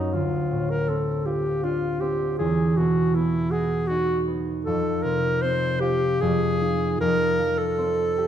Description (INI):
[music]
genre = classical, impressionist duo for alto saxophone and harp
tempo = 78 BPM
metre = 3/4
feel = rubato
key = unclear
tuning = A4 = 440 Hz
[part]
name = clear alto saxophone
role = melody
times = 0.0-8.3 s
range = Eb4 to C5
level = -24 LUFS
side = equal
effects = none
[part]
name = concert harp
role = accompaniment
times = 0.0-8.3 s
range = D2 to Ab4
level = -24 LUFS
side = right 1 dB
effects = none
[sound]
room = wet scoring stage reverb, RT60 1.9 s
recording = minimal, uncompressed stereo recording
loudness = -21 LUFS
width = side -9 dB against mid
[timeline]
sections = 0.0-8.3 A section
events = none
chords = 0.1 Dm7; 2.4 Esus2; 4.7 F5; 6.2 Ab/F; 7.0 G9sus4/F (rootless)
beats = | 0.13 0.89 1.64 | 2.40 3.14 3.89 | 4.66 5.43 6.22 | 7.01 7.79